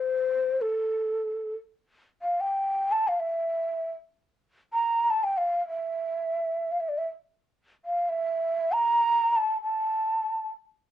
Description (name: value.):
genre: Turkish makam ensemble.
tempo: free time.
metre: none.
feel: none.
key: A makam kurdi.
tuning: A4 = 441 Hz.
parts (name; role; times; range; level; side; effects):
breathy mellow ney; solo; 0.0-10.5 s; A4 to Bb5; -25 LUFS; equal; none.
room: light reverb.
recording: worn, warbling old tape, cassette tape, warbly pitch drift.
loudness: -25 LUFS.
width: side -12 dB against mid.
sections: 0.0-1.8 A section; 1.8-10.9 A section.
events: none.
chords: none.